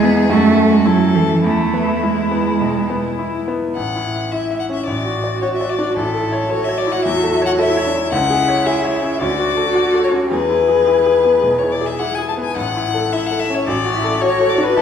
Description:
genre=quick classical-period movement for piano trio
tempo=109 BPM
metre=4/4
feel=rubato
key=A major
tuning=A4 = 440 Hz
part: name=rich violin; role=melody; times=0.0-14.8 s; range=E4 to A5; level=-19 LUFS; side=left 5 dB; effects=none
part: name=rich cello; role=second line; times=0.0-14.8 s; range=E3 to G#4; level=-18 LUFS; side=right 3 dB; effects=none
part: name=bright concert grand piano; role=accompaniment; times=0.0-14.8 s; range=A1 to E5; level=-20 LUFS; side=left 1 dB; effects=none
room=wet recital hall reverb, RT60 1.7 s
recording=heard from further back in the room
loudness=-14 LUFS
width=side -8 dB against mid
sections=0.0-3.8 A section; 3.8-14.8 B section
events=none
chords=0.3 F#m7; 1.4 E; 3.8 A; 4.9 D/A; 6.0 A; 8.1 C#m; 9.2 Dmaj7; 10.3 E; 12.6 A; 13.7 D/A

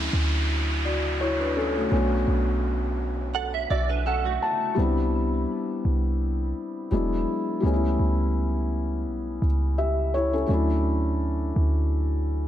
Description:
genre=contemporary R&B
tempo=84 BPM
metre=4/4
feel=swing 54% on 16ths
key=D major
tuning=A4 = 439 Hz
part: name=felt-muted upright piano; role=accompaniment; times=0.0-12.5 s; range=F#3 to A5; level=-26 LUFS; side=left 2 dB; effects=none
part: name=clean 808-style bass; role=bass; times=0.0-12.5 s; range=E1 to D2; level=-25 LUFS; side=equal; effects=none
part: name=downlifter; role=sound effects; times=0.0-4.8 s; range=none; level=-32 LUFS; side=right 1 dB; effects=none
part: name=direct-recorded clean electric guitar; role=arpeggios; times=3.3-4.8 s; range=A3 to F#5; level=-29 LUFS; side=right 10 dB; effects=ensemble chorus, ping-pong delay
room=light reverb, digital ambience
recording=none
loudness=-22 LUFS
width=side -11 dB against mid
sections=0.0-10.5 A section; 10.5-12.5 B section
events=felt piano fill 3.3-4.8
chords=0.0 Dmaj7; 1.9 Bm7; 4.8 Cmaj7; 6.9 E7; 7.6 A7/C#; 10.5 Dmaj7

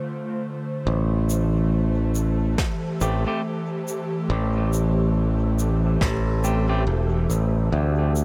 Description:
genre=ambient dub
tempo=70 BPM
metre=4/4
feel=swing 60% on 16ths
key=A minor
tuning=A4 = 440 Hz
part: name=airy breathy pad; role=sustained chords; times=0.0-8.2 s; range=D3 to C5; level=-30 LUFS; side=equal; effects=chorus
part: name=modern bright fingered electric bass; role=bass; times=0.9-8.2 s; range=E1 to D2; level=-23 LUFS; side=equal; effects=none
part: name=wind-like tuned noise texture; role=texture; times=1.3-8.2 s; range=A3 to A4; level=-39 LUFS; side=equal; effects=built-in reverb
part: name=shaker and snare drum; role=drums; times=1.3-8.2 s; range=none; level=-34 LUFS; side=equal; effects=dub echo
part: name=electronic kick drum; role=drums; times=2.6-6.2 s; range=none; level=-29 LUFS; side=equal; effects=overdrive
part: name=semi-hollow electric guitar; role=stabs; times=3.0-6.8 s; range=A3 to G4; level=-34 LUFS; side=equal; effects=dub echo
room=little or no reverb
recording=none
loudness=-23 LUFS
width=mono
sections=0.9-8.2 A section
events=break 0.0-0.9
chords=0.0 Dm7; 0.9 Am7; 7.7 D7(no3)

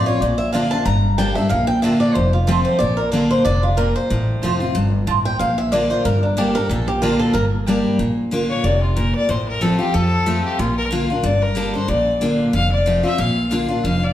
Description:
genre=bluegrass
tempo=185 BPM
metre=4/4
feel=swing 55% on 8ths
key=unclear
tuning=A4 = 441 Hz
part: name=picked swing-style acoustic guitar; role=melody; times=0.0-7.4 s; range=D4 to Bb5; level=-21 LUFS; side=equal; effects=none
part: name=picked steel-string acoustic guitar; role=accompaniment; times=0.0-14.1 s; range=F2 to A4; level=-20 LUFS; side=equal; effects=none
part: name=upright bass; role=bass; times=0.0-14.1 s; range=F1 to F2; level=-22 LUFS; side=equal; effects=none
part: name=mandolin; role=stabs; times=0.5-7.8 s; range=Bb3 to Bb5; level=-28 LUFS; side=right 6 dB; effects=none
part: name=clear fiddle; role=second line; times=8.5-14.1 s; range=F4 to F5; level=-21 LUFS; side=left 2 dB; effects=none
room=wet large studio reverb, RT60 1.3 s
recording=heard from further back in the room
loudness=-16 LUFS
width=side -12 dB against mid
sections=0.0-8.0 A section; 8.0-14.1 A section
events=steel-string acoustic guitar solo 0.0-8.0; fiddle solo 8.0-14.1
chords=0.2 Bb; 0.9 Gmadd9; 1.5 Bb; 2.2 F; 2.8 Bb; 4.1 F; 5.4 Bb; 6.0 Gmadd9; 6.7 Bb; 7.3 Gm; 8.0 Bb; 9.3 F/A; 10.6 Bb; 11.2 Gmadd9; 11.9 Bb; 12.5 F; 13.2 Bb

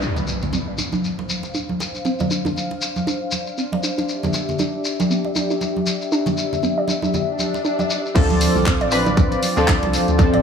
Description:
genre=deep house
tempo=118 BPM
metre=4/4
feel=swing 58% on 16ths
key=D dorian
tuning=A4 = 440 Hz
part: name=warm analog pad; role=sustained chords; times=0.0-10.4 s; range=C4 to F5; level=-26 LUFS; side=left 2 dB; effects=chorus, sidechain pumping
part: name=warbly dusty pluck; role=arpeggios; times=0.0-10.4 s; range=B3 to D5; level=-26 LUFS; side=right 2 dB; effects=chorus, sidechain pumping, dub echo
part: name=shekere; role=percussion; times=0.0-10.3 s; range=none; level=-28 LUFS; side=left 3 dB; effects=none
part: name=impact and swell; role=sound effects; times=0.0-2.1, 7.3-8.2 s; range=none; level=-28 LUFS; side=equal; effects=none
part: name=congas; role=percussion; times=0.2-10.4 s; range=none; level=-25 LUFS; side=right 1 dB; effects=none
part: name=warm analog keys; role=stabs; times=8.1-10.4 s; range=F3 to B4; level=-20 LUFS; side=equal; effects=chorus, vintage 12-bit sampler grit, sidechain pumping, dub echo
part: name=organ-like FM bass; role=bass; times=8.2-10.4 s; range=D1 to D2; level=-23 LUFS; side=left 1 dB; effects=sidechain pumping
part: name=electronic kick drum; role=drums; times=8.2-10.3 s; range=none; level=-17 LUFS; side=equal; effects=none
part: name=house drum kit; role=drums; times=8.2-10.4 s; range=crash cymbal, handclaps, hi-hat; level=-26 LUFS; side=equal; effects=low-pass filter on hats, low-pass filter on snare, low-pass filter on cymbals, low-pass filter on room
room=moderate echo chamber reverb, RT60 1.4 s, digital ambience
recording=none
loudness=-18 LUFS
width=side -7 dB against mid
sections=0.0-8.2 A section; 8.2-10.4 B section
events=impact 0.0-2.1; filter sweep on drum 0.0-8.2; swell 7.3-8.2; drop 8.2-10.4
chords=0.0 Dm7; 4.1 Em7; 8.2 Dm7

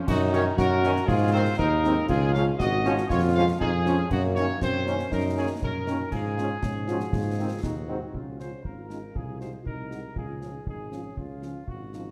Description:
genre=military-style march for wind band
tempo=119 BPM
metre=2/4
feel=straight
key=Db major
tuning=A4 = 441 Hz
part: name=clear euphonium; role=second line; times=0.0-12.1 s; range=Bb3 to Gb4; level=-33 LUFS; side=equal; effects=none
part: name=mellow trumpet section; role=melody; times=0.1-12.1 s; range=F4 to F5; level=-35 LUFS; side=equal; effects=none
part: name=mellow tuba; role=bass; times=0.1-12.1 s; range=Ab1 to Ab2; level=-30 LUFS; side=equal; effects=none
part: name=clash cymbals, concert bass drum and concert snare drum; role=drums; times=0.1-12.0 s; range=none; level=-36 LUFS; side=equal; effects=none
part: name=mellow French horn section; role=accompaniment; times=0.3-12.0 s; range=Eb3 to Gb4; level=-38 LUFS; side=equal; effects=none
part: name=dark trombone section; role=sustained chords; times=0.3-8.0 s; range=Eb3 to Db4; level=-36 LUFS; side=equal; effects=none
room=wet scoring stage reverb, RT60 1.7 s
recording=none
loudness=-25 LUFS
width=mono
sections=0.0-8.1 A section; 8.1-12.1 A section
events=none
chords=0.1 Ebm7/Gb; 1.1 Ab; 2.1 Db; 3.1 Db/F; 4.1 Ebm7/Gb; 6.1 Db/Ab; 7.1 Ab; 8.1 Db; 9.2 Ab7/C; 10.2 Db

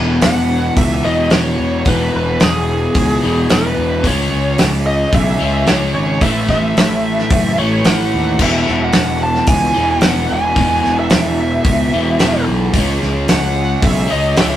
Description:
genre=quiet-loud alternative rock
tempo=110 BPM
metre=4/4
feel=straight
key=E major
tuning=A4 = 440 Hz
part: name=crunchy overdriven guitar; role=riff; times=0.0-14.6 s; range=E2 to C#4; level=-20 LUFS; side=left 3 dB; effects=none
part: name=fuzz guitar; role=riff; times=0.0-14.6 s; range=E2 to C#4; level=-22 LUFS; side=right 4 dB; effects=distortion
part: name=fuzz fingered electric bass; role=bass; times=0.0-14.6 s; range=E1 to D#2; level=-19 LUFS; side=equal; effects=overdrive
part: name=biting lead guitar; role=melody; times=0.2-14.6 s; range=G#4 to A5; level=-19 LUFS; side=equal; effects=overdrive
part: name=loose indie drum kit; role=drums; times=0.2-14.5 s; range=crash cymbal, hi-hat, kick drum, snare drum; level=-16 LUFS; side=equal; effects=none
room=moderate studio reverb, RT60 0.6 s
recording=rough rehearsal-room recording, tube saturation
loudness=-12 LUFS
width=side -12 dB against mid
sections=0.0-14.6 A section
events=none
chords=0.0 E; 4.0 C#m; 6.2 A5; 8.4 E; 12.7 C#m7

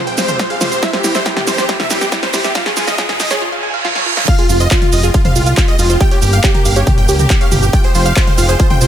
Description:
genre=uplifting trance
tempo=139 BPM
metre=4/4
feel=straight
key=F minor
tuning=A4 = 439 Hz
part: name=supersaw chords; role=melody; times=0.0-8.9 s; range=F4 to G5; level=-19 LUFS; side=equal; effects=sidechain pumping, ping-pong delay
part: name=clear studio string section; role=sustained chords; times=0.0-8.9 s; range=Db2 to Ab4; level=-26 LUFS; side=equal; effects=none
part: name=wide unison pluck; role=arpeggios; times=0.0-8.9 s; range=E4 to Bb5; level=-21 LUFS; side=right 3 dB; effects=sidechain pumping, ping-pong delay
part: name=riser and reverse cymbal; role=sound effects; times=0.0-4.3 s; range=none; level=-20 LUFS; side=right 3 dB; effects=none
part: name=punchy analog drum machine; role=drums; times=0.1-8.9 s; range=crash cymbal, handclaps, hi-hat, shaker, snare drum, toms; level=-18 LUFS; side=equal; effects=overdrive
part: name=electronic kick drum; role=drums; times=0.4-8.7 s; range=none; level=-13 LUFS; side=equal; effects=overdrive, high-pass filter on kick
part: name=supersaw stab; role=second line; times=4.3-8.9 s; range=F4 to G5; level=-24 LUFS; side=right 1 dB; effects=none
part: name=fat analog bass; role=bass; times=4.5-8.9 s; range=F1 to Db2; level=-14 LUFS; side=equal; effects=sidechain pumping
room=light reverb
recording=high-pass filter, faint mains hum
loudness=-11 LUFS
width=side -10 dB against mid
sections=0.0-4.3 A section; 4.3-8.9 B section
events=build-up 0.0-4.3; drum fill 0.0-3.4, 3.8-4.3; riser 0.0-3.4; filter sweep on synth pluck 0.0-4.3; reverse cymbal 3.4-4.3; drop 4.3-8.9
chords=0.0 Fmadd9; 0.8 C/E; 2.6 Db; 4.3 Fmadd9; 6.0 Gdim; 7.7 Fmadd9

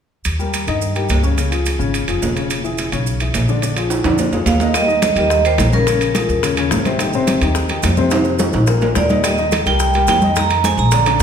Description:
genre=Afro-Cuban jazz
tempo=214 BPM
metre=4/4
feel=straight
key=Eb major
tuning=A4 = 440 Hz
part: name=maracas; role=percussion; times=0.2-11.2 s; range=none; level=-29 LUFS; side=right 7 dB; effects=none
part: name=upright bass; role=bass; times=0.3-11.2 s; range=Fb1 to G2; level=-19 LUFS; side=equal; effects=none
part: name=timbales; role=percussion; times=0.3-11.2 s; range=none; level=-22 LUFS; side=right 4 dB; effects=none
part: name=warm upright piano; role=accompaniment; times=0.4-11.2 s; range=Bb2 to Eb5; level=-20 LUFS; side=left 4 dB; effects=none
part: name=vibraphone with medium hard mallets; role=melody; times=4.5-6.5, 9.0-11.2 s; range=Bb4 to Bb5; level=-17 LUFS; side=right 3 dB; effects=none
part: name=bongos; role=percussion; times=4.7-11.2 s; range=none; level=-26 LUFS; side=left 6 dB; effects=none
part: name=congas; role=percussion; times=4.7-11.2 s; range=none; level=-24 LUFS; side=equal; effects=none
room=wet recital hall reverb, RT60 1.3 s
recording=recorded in a church or concert hall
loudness=-14 LUFS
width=side -8 dB against mid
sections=0.3-4.7 A section; 4.7-11.2 B section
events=drum fill 3.9-4.7, 8.1-9.2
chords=0.3 Eb; 1.4 Db; 2.5 E6; 3.6 Bb7; 4.7 Eb; 5.9 Bbm7; 6.4 Abadd11; 7.0 Abmaj7; 8.1 F5; 8.7 Bb; 9.2 Eb; 9.8 Cm7; 10.4 Fm7

